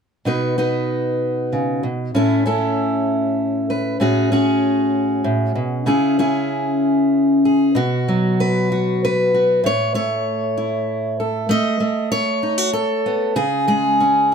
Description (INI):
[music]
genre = folk, solo fingerstyle acoustic guitar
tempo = 96 BPM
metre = 3/4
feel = straight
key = unclear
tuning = A4 = 442 Hz
[part]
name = fingerpicked steel-string acoustic guitar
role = solo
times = 0.3-14.3 s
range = A2 to D#5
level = -16 LUFS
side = equal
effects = none
[sound]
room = moderate small room reverb, RT60 0.6 s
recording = none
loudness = -16 LUFS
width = side -6 dB against mid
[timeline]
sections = 0.3-7.8 A section; 7.8-14.3 B section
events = none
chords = 0.3 Badd9; 2.1 A; 4.0 F#madd9/A; 5.9 C#m; 7.8 B5; 9.6 A; 11.5 F#m/A (rootless); 13.4 C#5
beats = | 0.26 0.89 1.52 | 2.14 2.76 3.38 | 4.00 4.62 5.23 | 5.86 6.48 7.12 | 7.76 8.39 9.02 | 9.64 10.26 10.88 | 11.50 12.13 12.75 | 13.38 14.01